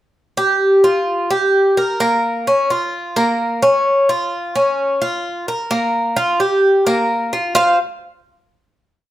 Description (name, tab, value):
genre	latin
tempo	130 BPM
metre	4/4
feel	straight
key	unclear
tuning	A4 = 439 Hz
part	Cuban tres	solo	0.4-7.8 s	Bb3 to F5	-14 LUFS	equal	none
room	wet large studio reverb, RT60 0.9 s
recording	none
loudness	-14 LUFS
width	side -13 dB against mid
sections	0.1-7.6 montuno (vamp); 7.6-9.1 final chord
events	none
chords	0.1 Fsus2; 2.0 Bbm; 3.9 Db6; 5.7 Gm7/Bb; 7.6 F5